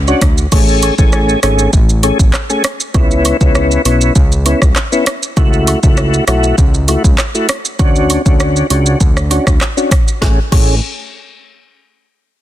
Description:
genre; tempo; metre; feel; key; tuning
dancehall; 99 BPM; 4/4; straight; A major; A4 = 440 Hz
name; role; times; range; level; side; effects
fat analog bass; bass; 0.0-10.8 s; G#1 to D2; -14 LUFS; equal; none
tonewheel organ; accompaniment; 0.1-10.8 s; A3 to G#4; -15 LUFS; left 2 dB; chorus vibrato, slow rotary speaker, low-pass filter
afro-pop drum kit; drums; 0.1-10.7 s; crash cymbal, handclaps, hi-hat, kick drum, rim click, shaker, snare drum; -12 LUFS; equal; soft clipping on snare
woodblock and cabasa; percussion; 0.1-10.8 s; none; -26 LUFS; right 8 dB; none
room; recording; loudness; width
digital ambience; dense, heavily limited modern master; -9 LUFS; side -13 dB against mid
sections
0.5-10.2 A section; 10.2-12.4 B section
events
none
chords
0.0 Dmaj7; 0.5 Amaj7; 2.9 C#m7; 5.4 F#m7; 7.8 Dmaj7; 10.2 Amaj7

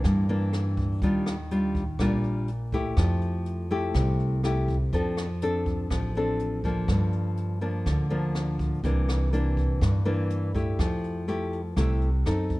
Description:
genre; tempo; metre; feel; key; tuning
bossa nova; 123 BPM; 4/4; straight; F major; A4 = 440 Hz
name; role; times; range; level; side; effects
nylon-string guitar; accompaniment; 0.0-12.6 s; G2 to A4; -27 LUFS; left 1 dB; none
upright bass; bass; 0.0-12.6 s; A1 to G2; -27 LUFS; equal; none
jazz brush drum kit; drums; 0.0-12.6 s; hi-hat, kick drum, rim click; -32 LUFS; right 1 dB; none
room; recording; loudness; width
little or no reverb; rough home demo mix; -24 LUFS; side -19 dB against mid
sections
0.0-12.6 A section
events
none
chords
0.0 C9 (rootless); 1.0 Ebmaj9; 3.0 Fmaj9; 4.9 Dm7/F; 6.9 Gm7; 8.8 C9; 10.8 Fmaj9

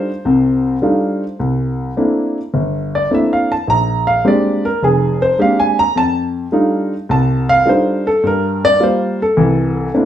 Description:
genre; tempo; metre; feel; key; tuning
solo jazz; 105 BPM; 4/4; swing 68% on 8ths; unclear; A4 = 440 Hz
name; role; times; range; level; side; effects
warm baby grand piano; solo; 0.0-10.1 s; F1 to Bb5; -13 LUFS; equal; none
room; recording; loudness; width
wet studio reverb, RT60 0.6 s; heard from further back in the room; -13 LUFS; side -10 dB against mid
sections
0.0-10.1 A section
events
grand piano solo 0.0-10.1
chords
0.0 F13; 1.4 C13; 3.7 Bb13; 6.0 F13; 8.2 Gm7; 9.4 C13

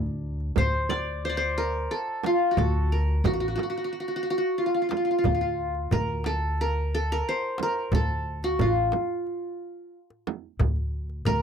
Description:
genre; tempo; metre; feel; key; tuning
Arabic maqam ensemble; 90 BPM; 4/4; straight; D maqam saba; A4 = 440 Hz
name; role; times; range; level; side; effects
qanun; melody; 0.0-11.4 s; D4 to D5; -26 LUFS; equal; none
upright bass; bass; 0.0-11.4 s; A1 to D2; -28 LUFS; equal; none
darbuka; percussion; 0.1-11.4 s; none; -31 LUFS; left 2 dB; none
frame drum; percussion; 0.6-11.4 s; none; -31 LUFS; right 9 dB; none
room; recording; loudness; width
light reverb; dry, close 1970s-style studio recording; -24 LUFS; side -7 dB against mid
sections
0.0-11.4 A section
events
none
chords
none

